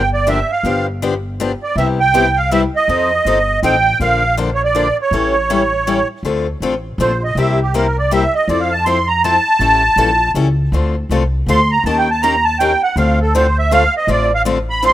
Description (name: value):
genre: acoustic string swing (jazz manouche)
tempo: 161 BPM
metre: 3/4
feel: swing 62% on 8ths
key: D minor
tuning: A4 = 440 Hz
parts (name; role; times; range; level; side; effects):
- musette accordion; melody; 0.0-14.9 s; G4 to C6; -14 LUFS; right 2 dB; none
- upright bass; bass; 0.0-14.9 s; G1 to F2; -19 LUFS; equal; none
- picked steel-string acoustic guitar; accompaniment; 0.3-14.9 s; C3 to Bb4; -19 LUFS; left 5 dB; none
room: studio reverb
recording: rough home demo mix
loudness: -13 LUFS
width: side -13 dB against mid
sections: 0.0-6.2 A section; 6.2-14.9 B section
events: accordion solo 6.2-14.9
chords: 0.0 Gm7; 0.6 G7; 1.8 Cmaj7; 2.9 F7; 4.0 Bbmaj7; 5.1 A7; 6.2 Dm7; 7.4 C7; 8.5 Fmaj7; 9.6 A7; 10.7 Dm7; 11.8 Eb7; 13.0 Dm7